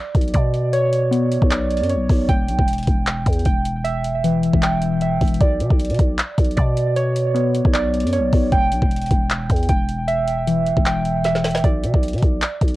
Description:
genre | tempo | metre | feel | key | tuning
hip hop, trap | 154 BPM | 4/4 | half-time | B minor | A4 = 440 Hz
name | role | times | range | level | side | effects
muted felt-like synth keys | arpeggios | 0.0-12.8 s | E3 to G5 | -21 LUFS | right 1 dB | chorus, cassette tape, tape echo
growling 808-style bass | bass | 0.1-12.8 s | E1 to B2 | -22 LUFS | equal | none
trap drum kit | drums | 0.1-12.7 s | handclaps, hi-hat, kick drum, snare drum | -19 LUFS | equal | cassette tape
room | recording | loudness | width
light reverb | home recording on cassette | -16 LUFS | side -17 dB against mid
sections
0.0-11.6 A section; 11.6-12.8 B section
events
drum fill 11.2-11.6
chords
0.0 Bmadd9; 2.3 Em; 5.4 Bmadd9; 8.5 Em; 11.6 Bm

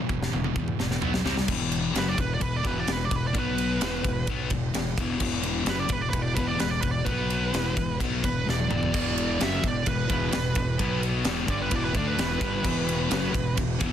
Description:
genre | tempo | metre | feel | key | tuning
heavy metal | 129 BPM | 4/4 | straight | E minor | A4 = 440 Hz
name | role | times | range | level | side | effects
heavy high-gain guitar | riff | 0.0-1.5 s | E2 to C4 | -33 LUFS | right 14 dB | distortion
sludgy distorted guitar | riff | 0.0-13.9 s | E2 to D4 | -29 LUFS | left 6 dB | overdrive
fuzz fingered electric bass | bass | 0.1-13.9 s | E1 to E2 | -31 LUFS | equal | overdrive
tight metal drum kit | drums | 0.1-13.9 s | crash cymbal, kick drum, ride cymbal, snare drum, toms | -29 LUFS | right 1 dB | none
high-gain lead guitar | melody | 2.0-13.6 s | B4 to E5 | -31 LUFS | right 4 dB | distortion, digital delay
sludgy distorted guitar | riff | 8.9-13.9 s | E2 to D4 | -34 LUFS | right 3 dB | overdrive
room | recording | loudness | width
studio reverb | dense, heavily limited modern master | -24 LUFS | side -10 dB against mid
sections
0.0-1.5 A section; 1.5-13.9 B section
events
drum fill 0.0-1.5, 8.5-8.9; lead electric guitar solo 1.5-13.9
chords
0.0 E5; 1.0 B5; 1.2 C5; 1.5 E5; 3.3 B5; 3.8 E5; 7.1 B5; 7.5 E5; 10.8 B5; 11.3 Em

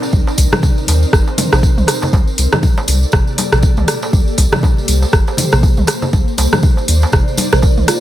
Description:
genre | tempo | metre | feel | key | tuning
afro house | 120 BPM | 4/4 | swing 58% on 16ths | C dorian | A4 = 440 Hz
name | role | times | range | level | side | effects
ethereal airy pad | sustained chords | 0.0-8.0 s | Bb3 to D5 | -22 LUFS | equal | ensemble chorus, built-in reverb, tremolo, sidechain pumping
darbuka | percussion | 0.0-7.7 s | none | -23 LUFS | right 2 dB | none
tambourine | percussion | 0.0-8.0 s | none | -25 LUFS | right 3 dB | none
warm sub bass | bass | 0.1-7.8 s | G1 to Eb2 | -14 LUFS | equal | sidechain pumping
electronic kick drum | drums | 0.1-7.7 s | none | -13 LUFS | equal | none
deep house drum kit | drums | 0.4-8.0 s | hi-hat, rim click, toms | -17 LUFS | equal | overdrive
congas | percussion | 0.4-8.0 s | none | -22 LUFS | left 2 dB | none
kalimba | melody | 7.5-8.0 s | F4 to Bb4 | -19 LUFS | right 4 dB | none
room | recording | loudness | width
studio ambience | none | -11 LUFS | side -13 dB against mid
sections
0.0-8.0 A section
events
none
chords
0.0 Cm9; 2.1 Gmadd9; 6.1 Cm9

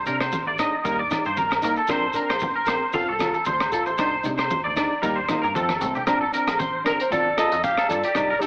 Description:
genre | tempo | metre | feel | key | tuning
highlife guitar band | 115 BPM | 4/4 | swing 53% on 16ths | Bb major | A4 = 440 Hz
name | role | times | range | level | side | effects
twangy electric guitar | arpeggios | 0.0-8.5 s | G4 to F5 | -23 LUFS | right 1 dB | ensemble chorus, tape echo
metallic FM bass | bass | 0.0-8.4 s | F1 to C3 | -34 LUFS | equal | none
flamenco guitar | accompaniment | 0.1-8.5 s | F3 to Bb4 | -28 LUFS | equal | none
crunchy breakbeat drum kit | drums | 0.1-8.5 s | hi-hat, kick drum, rim click | -30 LUFS | equal | none
congas | percussion | 0.1-8.5 s | none | -35 LUFS | equal | none
shekere | percussion | 0.1-8.5 s | none | -39 LUFS | equal | none
agogo bells | percussion | 0.2-8.3 s | none | -30 LUFS | left 1 dB | none
breathy clarinet | melody | 6.9-8.5 s | G4 to F5 | -22 LUFS | equal | none
room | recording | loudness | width
moderate plate reverb, RT60 2.4 s | AM radio sound | -20 LUFS | side -28 dB against mid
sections
0.0-6.1 A section; 6.1-8.5 B section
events
drum fill 5.4-6.1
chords
0.0 Cmadd9; 0.9 Eb; 1.9 Bbadd9; 2.9 F; 4.0 Cmadd9; 5.0 Eb; 5.5 F; 6.1 Bbadd9; 7.1 F

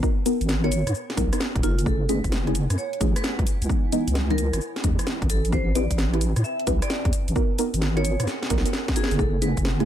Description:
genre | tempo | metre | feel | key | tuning
UK garage, two-step garage | 131 BPM | 4/4 | swing 66% on 16ths | unclear | A4 = 439 Hz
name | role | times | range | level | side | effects
deep mellow chord stab | stabs | 0.0-9.8 s | E3 to B4 | -27 LUFS | equal | chorus
deep soft wobble bass | bass | 0.0-9.8 s | D#1 to A2 | -24 LUFS | equal | chorus
electronic kick drum | drums | 0.0-9.6 s | none | -25 LUFS | equal | overdrive
house drum kit | drums | 0.0-9.8 s | hi-hat, rim click, shaker, snare drum | -29 LUFS | equal | overdrive
granular cloud pad | texture | 0.0-9.8 s | A3 to B5 | -39 LUFS | equal | built-in reverb, sidechain pumping
vibraphone with medium hard mallets | melody | 0.6-9.6 s | E#4 to E5 | -32 LUFS | right 2 dB | digital delay
room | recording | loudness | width
little or no reverb | none | -21 LUFS | side -10 dB against mid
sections
0.0-9.8 A section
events
fade-in on ambient pad 0.0-9.8; filter sweep on synth stab 0.0-9.8; drum fill 8.3-9.2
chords
0.0 G#m9; 1.9 F#m9; 3.5 C#m9; 5.3 Am9; 7.1 G#m9; 9.2 F#m9

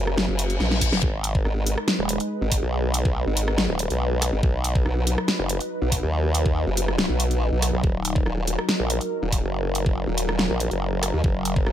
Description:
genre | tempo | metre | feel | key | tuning
heavy wobble dubstep | 141 BPM | 4/4 | half-time | unclear | A4 = 439 Hz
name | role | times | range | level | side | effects
lush unison pad | sustained chords | 0.0-11.7 s | F#3 to B4 | -30 LUFS | equal | chorus, phaser, sidechain pumping
formant-sweep wobble bass | bass | 0.0-11.7 s | D#1 to D#2 | -24 LUFS | equal | chorus, overdrive
dubstep drum kit | drums | 0.1-11.7 s | hi-hat, rim click, snare drum | -25 LUFS | equal | studio ambience
reverse cymbal | sound effects | 0.4-1.0 s | none | -29 LUFS | left 6 dB | none
electronic kick drum | drums | 0.8-11.6 s | none | -23 LUFS | equal | studio ambience
formant-sweep wobble bass | bass | 0.9-11.6 s | D#1 to D#2 | -24 LUFS | equal | chorus, overdrive
room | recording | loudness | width
little or no reverb | none | -21 LUFS | side -11 dB against mid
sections
0.0-11.7 A section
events
reverse cymbal 0.4-1.0; drum fill 0.6-1.0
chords
0.0 F#; 1.0 G#m; 4.4 B; 7.8 D#m

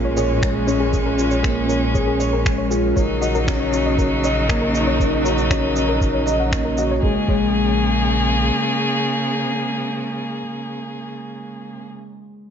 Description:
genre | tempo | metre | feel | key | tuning
piano and strings electronica | 118 BPM | 4/4 | straight | Bb minor | A4 = 439 Hz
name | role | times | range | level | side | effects
warm string quartet | sustained chords | 0.0-11.9 s | Bb2 to Ab4 | -22 LUFS | right 1 dB | none
soft round pluck | arpeggios | 0.0-7.4 s | Ab4 to Db6 | -28 LUFS | left 4 dB | chorus, sidechain pumping, diffuse ambient delay
felt-muted upright piano | riff | 0.0-12.5 s | Ab3 to Eb5 | -22 LUFS | left 2 dB | lush chorus, diffuse ambient delay
warm sub bass | bass | 0.0-8.5 s | Bb1 | -24 LUFS | right 1 dB | tube saturation, sidechain pumping
electronic shaker and finger snaps | drums | 0.2-6.9 s | none | -29 LUFS | equal | none
electronic kick drum | drums | 0.4-7.4 s | none | -22 LUFS | right 1 dB | none
room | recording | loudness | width
moderate plate reverb, RT60 1.2 s | dreamy mix soaked in reverb, nothing above 7.6 kHz | -17 LUFS | side -8 dB against mid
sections
0.0-7.0 A section; 7.0-11.1 B section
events
drop 0.0-7.0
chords
0.0 Bbm7; 3.0 Ebm7/Bb; 7.0 Bbm7

